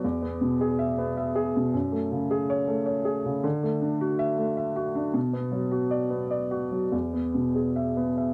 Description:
neoclassical minimalist piano; 104 BPM; 3/4; uneven beats, rubato; A4 = 445 Hz
warm upright piano; solo; 0.0-8.3 s; E2 to E5; -27 LUFS; equal
light reverb; dry, close 1970s-style studio recording; -27 LUFS; mono
0.0-8.3 A section
0.0 E; 1.7 F#madd9; 3.4 Dadd9; 5.2 Bm; 6.9 E

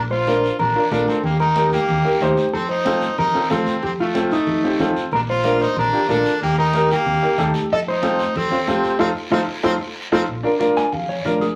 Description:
latin, cumbia; 186 BPM; 4/4; straight; Bb major; A4 = 442 Hz
brilliant trumpet; second line; 0.0-10.2 s; A3 to A4; -27 LUFS; equal
hollow-body short-scale fingered electric bass; bass; 0.0-11.5 s; Bb1 to F2; -29 LUFS; equal
mellow electric guitar; melody; 0.1-11.6 s; Eb4 to Ab5; -24 LUFS; equal; spring reverb
congas; percussion; 0.1-11.6 s; -32 LUFS; equal
clear upright piano; accompaniment; 0.3-11.4 s; C4 to C5; -23 LUFS; equal
guiro; percussion; 0.3-11.6 s; -37 LUFS; equal
wet club reverb, RT60 0.5 s; vinyl crackle; -19 LUFS; mono
0.0-10.3 A section; 10.3-11.6 B section
band accent 9.0-10.3; clean electric guitar solo 10.3-11.6
0.0 Bb; 1.2 Eb; 2.5 F7; 5.1 Bb; 6.4 Eb; 7.7 F7; 10.3 Bb

